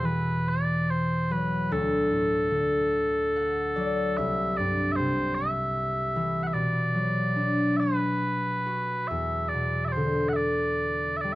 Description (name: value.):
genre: celtic folk, Celtic slow air.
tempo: 46-51 BPM (dotted quarters).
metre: 6/8.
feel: rubato.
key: unclear.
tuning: A4 = 439 Hz.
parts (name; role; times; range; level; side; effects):
mellow small bagpipes; melody; 0.0-11.3 s; A4 to F#5; -28 LUFS; right 1 dB; none.
concert harp; accompaniment; 0.0-11.4 s; C2 to F#5; -26 LUFS; left 1 dB; none.
room: small room ambience.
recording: dry, close 1970s-style studio recording.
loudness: -24 LUFS.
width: side -18 dB against mid.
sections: 0.0-11.4 A section.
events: harp fill 2.9-4.2.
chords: 0.0 Esus2; 1.7 D; 4.2 C; 6.6 Bm; 9.1 E7(no3).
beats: 0.47 | 1.71 2.95 | 4.18 5.38 | 6.56 7.81 | 9.10 10.38.